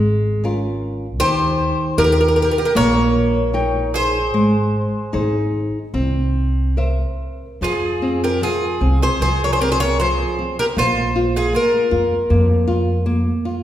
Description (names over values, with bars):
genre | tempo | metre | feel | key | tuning
fado-style ballad | 77 BPM | 4/4 | rubato | F minor from 7.6 s | A4 = 445 Hz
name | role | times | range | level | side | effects
flamenco guitar | accompaniment | 0.0-13.6 s | Eb3 to G5 | -22 LUFS | equal | none
upright bass | bass | 0.0-13.3 s | Ab1 to F2 | -20 LUFS | equal | none
picked twelve-string acoustic guitar | melody | 1.2-13.0 s | Ab4 to Db5 | -19 LUFS | left 1 dB | none
bowl-back mandolin | second line | 1.2-13.0 s | F4 to Bb4 | -25 LUFS | right 3 dB | none
room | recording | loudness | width
wet recital hall reverb, RT60 1.6 s | recorded in a church or concert hall | -16 LUFS | side -12 dB against mid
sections
0.0-7.6 A section; 7.6-13.6 B section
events
none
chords
0.0 Db6; 1.2 Eb; 4.3 Ab; 5.9 C7; 7.6 F5; 10.8 Bb5